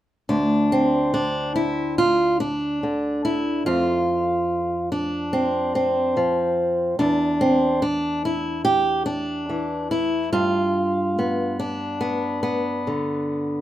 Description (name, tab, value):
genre	folk, solo fingerstyle acoustic guitar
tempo	71 BPM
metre	4/4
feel	straight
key	unclear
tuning	A4 = 437 Hz
part	fingerpicked steel-string acoustic guitar	solo	0.3-13.6 s	D2 to G4	-20 LUFS	equal	none
room	light reverb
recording	minimal, uncompressed stereo recording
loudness	-20 LUFS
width	side -13 dB against mid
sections	0.3-13.6 A section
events	none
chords	0.3 N.C.; 10.3 G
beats	| 0.28 1.13 1.98 2.82 | 3.66 4.49 5.33 6.16 | 6.99 7.82 8.65 9.49 | 10.33 11.17 12.02 12.87